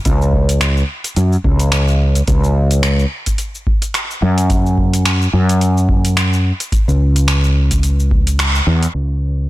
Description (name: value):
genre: sunset chillout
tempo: 108 BPM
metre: 4/4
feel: swing 57% on 16ths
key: unclear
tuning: A4 = 440 Hz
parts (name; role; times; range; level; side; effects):
- fretless electric bass; bass; 0.1-9.5 s; C#2 to F#2; -13 LUFS; equal; analog chorus
- deep house drum kit; drums; 0.1-9.1 s; cabasa, crash cymbal, finger snaps, hi-hat; -20 LUFS; equal; overdrive, soft clipping on snare
- electronic kick drum; drums; 0.1-8.2 s; none; -17 LUFS; equal; none
room: digital ambience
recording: blown-out, overdriven recording, overdrive, low-pass filter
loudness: -12 LUFS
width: side -16 dB against mid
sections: 0.0-8.9 A section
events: band accent 8.4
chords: none